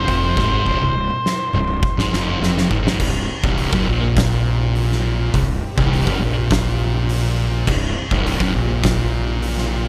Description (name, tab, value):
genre	stoner and doom metal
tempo	103 BPM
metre	4/4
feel	straight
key	unclear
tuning	A4 = 442 Hz
part	octave-fuzz lead guitar	melody	0.0-2.4 s	C5	-25 LUFS	equal	wah, distortion, digital delay
part	string machine, cellos	sustained chords	0.0-9.9 s	C3 to G4	-37 LUFS	equal	none
part	thick fuzz guitar	riff	0.0-9.9 s	C2 to Bb2	-26 LUFS	equal	distortion
part	thick fuzz guitar	riff	0.0-9.9 s	C2 to Bb2	-26 LUFS	equal	distortion
part	fuzz fingered electric bass	bass	0.0-9.9 s	C1 to Bb1	-25 LUFS	equal	overdrive
part	oversized low-tuned drum kit	drums	0.1-9.6 s	crash cymbal, hi-hat, kick drum, snare drum, toms	-24 LUFS	equal	none
room	little or no reverb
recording	none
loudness	-19 LUFS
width	mono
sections	0.0-3.0 A section; 3.0-9.9 B section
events	drum fill 0.7-3.0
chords	0.0 C5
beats	0.09 | 0.67 1.25 1.84 2.42 | 3.00 3.59 4.17 4.75 | 5.34 5.92 6.50 7.09 | 7.67 8.25 8.84 9.42